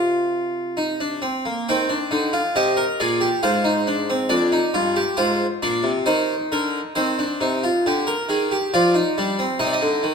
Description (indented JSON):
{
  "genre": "classical, baroque-style 3-part fugue for harpsichord",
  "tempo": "68 BPM",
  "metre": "3/4",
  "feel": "straight",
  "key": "C minor",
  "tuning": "A4 = 440 Hz",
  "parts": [
    { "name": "harpsichord", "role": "solo", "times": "0.0-10.1 s", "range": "F2 to G5", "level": "-19 LUFS", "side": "equal", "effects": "none" }
  ],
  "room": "wet recital hall reverb, RT60 1.4 s",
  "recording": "none",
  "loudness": "-19 LUFS",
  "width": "side -6 dB against mid",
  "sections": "0.0-1.7 A section; 1.7-7.0 B section; 7.0-10.1 A section",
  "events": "none",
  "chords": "0.0 Cm; 3.4 Fm/Ab; 4.3 Ddim/F; 6.1 Cm/Eb; 7.0 Cm; 8.7 Ebmaj13/F; 9.6 Cmadd9"
}